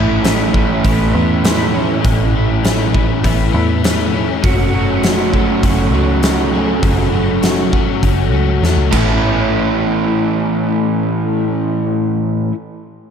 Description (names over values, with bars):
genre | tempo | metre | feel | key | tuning
rock, shoegaze and dream pop | 100 BPM | 4/4 | straight | A major | A4 = 439 Hz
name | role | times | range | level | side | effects
direct-recorded clean electric guitar | arpeggios | 0.0-12.5 s | E3 to A4 | -27 LUFS | right 9 dB | ensemble chorus, tape echo
overdriven electric guitar | riff | 0.0-12.6 s | F#2 to F#4 | -18 LUFS | left 12 dB | ensemble chorus
overdriven electric guitar | riff | 0.0-12.5 s | A2 to F#4 | -18 LUFS | right 8 dB | reverse reverb
vintage muted fingered electric bass | bass | 0.0-12.5 s | F#1 to E2 | -19 LUFS | equal | none
huge arena drum kit | drums | 0.2-9.1 s | crash cymbal, hi-hat, kick drum, snare drum | -18 LUFS | equal | none
room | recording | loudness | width
light reverb, small room ambience | none | -12 LUFS | side -7 dB against mid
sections
0.0-9.2 A section; 9.2-11.6 B section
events
drum fill 8.6-9.2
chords
0.0 Aadd9; 4.4 F#madd9; 8.9 Aadd9